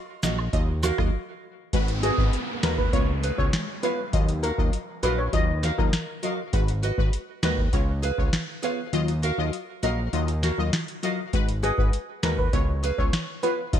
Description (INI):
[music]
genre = dancehall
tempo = 100 BPM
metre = 4/4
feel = straight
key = Eb minor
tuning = A4 = 439 Hz
[part]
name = synth brass stab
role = accompaniment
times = 0.2-13.8 s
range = Gb3 to Eb5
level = -31 LUFS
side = left 3 dB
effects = chorus, phaser
[part]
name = nylon-string guitar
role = arpeggios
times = 0.2-13.6 s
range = Gb4 to F5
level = -32 LUFS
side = right 3 dB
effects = wide subtle chorus, ping-pong delay
[part]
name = fat analog bass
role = bass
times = 0.2-13.8 s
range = Ab1 to Eb2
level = -26 LUFS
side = equal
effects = none
[part]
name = booming analog drum machine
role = drums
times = 0.2-13.8 s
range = hi-hat, kick drum, rim click, snare drum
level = -25 LUFS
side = equal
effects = vintage 12-bit sampler grit
[part]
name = cabasa and woodblock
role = percussion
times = 0.2-1.0 s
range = none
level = -38 LUFS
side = right 6 dB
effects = none
[part]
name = downlifter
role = sound effects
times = 1.7-6.5 s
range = none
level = -34 LUFS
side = right 1 dB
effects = none
[part]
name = steel pan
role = melody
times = 2.0-5.9, 11.6-13.5 s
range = Ab4 to Eb5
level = -30 LUFS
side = left 1 dB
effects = ping-pong delay
[sound]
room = digital ambience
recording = bright 1980s-style digital production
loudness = -23 LUFS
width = side -10 dB against mid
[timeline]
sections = 0.0-1.7 A section; 1.7-13.8 B section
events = break 1.1-1.7; kick muted 8.9-11.3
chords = 0.0 Ebmadd9; 1.7 Abm7; 2.9 Db7; 4.1 Ebmadd9; 6.5 Abm7; 7.7 Db7; 8.9 Ebmadd9; 11.3 Abm7; 12.5 Db7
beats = 0.53 1.13 | 1.73 2.33 2.93 3.53 | 4.13 4.73 5.33 5.93 | 6.53 7.13 7.73 8.33 | 8.93 9.53 10.13 10.73 | 11.33 11.93 12.53 13.13 | 13.73